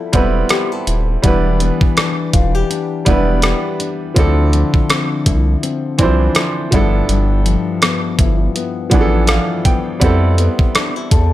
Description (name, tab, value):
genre	contemporary R&B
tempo	82 BPM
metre	4/4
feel	swing 58% on 16ths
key	unclear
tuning	A4 = 440 Hz
part	clear grand piano	accompaniment	0.0-11.3 s	E3 to G5	-19 LUFS	right 3 dB	none
part	nylon-string guitar	arpeggios	0.0-11.3 s	G2 to A4	-20 LUFS	left 6 dB	tape echo
part	round analog bass	bass	0.1-11.3 s	Eb1 to F2	-15 LUFS	equal	none
part	crisp 8-bit digital drum machine	drums	0.1-11.3 s	hi-hat, kick drum, rim click	-15 LUFS	equal	none
room	light reverb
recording	none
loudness	-13 LUFS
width	side -14 dB against mid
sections	0.0-11.3 A section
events	grand piano fill 8.9-10.0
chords	0.0 Fmaj9#11; 1.2 Em7; 4.2 Dm9; 6.7 G13; 10.0 Fmaj9#11